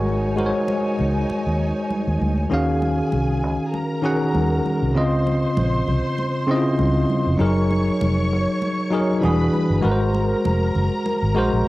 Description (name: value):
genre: lush 1970s-style soul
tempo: 98 BPM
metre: 4/4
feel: swing 54% on 16ths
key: unclear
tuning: A4 = 441 Hz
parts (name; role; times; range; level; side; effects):
- warm studio string section; second line; 0.0-11.7 s; Eb4 to Db6; -28 LUFS; equal; cassette tape
- bell-like tine electric piano; accompaniment; 0.0-11.7 s; Db3 to Gb5; -20 LUFS; left 1 dB; medium stereo tremolo, cassette tape
- vintage muted fingered electric bass; bass; 0.0-11.6 s; E1 to Eb2; -22 LUFS; equal; none
- congas; percussion; 0.1-11.2 s; none; -31 LUFS; right 3 dB; none
room: light reverb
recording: home recording on cassette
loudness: -18 LUFS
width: side -18 dB against mid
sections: 0.0-2.5 A section; 2.5-11.7 B section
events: none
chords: 0.0 Ab9sus4; 2.5 Ebm11; 5.0 Dbmaj9; 7.4 Gb69; 9.2 E9; 9.8 Ab9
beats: | 0.08 0.69 1.30 1.91 | 2.52 3.13 3.74 4.35 | 4.96 5.57 6.18 6.79 | 7.40 8.01 8.62 9.23 | 9.84 10.45 11.06 11.67